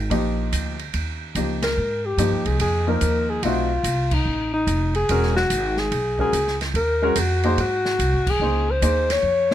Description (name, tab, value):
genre	jazz, small-group swing and bop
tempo	145 BPM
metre	4/4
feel	swing 66% on 8ths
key	Ab major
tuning	A4 = 439 Hz
part	upright bass	bass	0.0-9.5 s	E1 to Ab2	-24 LUFS	right 1 dB	none
part	warm baby grand piano	accompaniment	0.1-9.5 s	F3 to C5	-24 LUFS	left 1 dB	none
part	open jazz drum kit	drums	0.1-9.5 s	crash cymbal, hi-hat, kick drum, ride cymbal, snare drum	-28 LUFS	right 2 dB	none
part	breathy alto saxophone	melody	1.6-9.5 s	D#4 to Db5	-22 LUFS	left 2 dB	none
room	little or no reverb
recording	close, detailed microphones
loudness	-19 LUFS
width	side -12 dB against mid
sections	0.0-1.8 A section; 1.8-9.5 B section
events	band accent 1.6, 4.1, 8.2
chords	0.0 Ebmaj7; 0.9 Eb7; 1.8 Abmaj7sus2; 3.4 B7b9; 5.1 Eadd9; 6.8 Ebm9; 7.6 Ab7; 8.4 Dbmaj9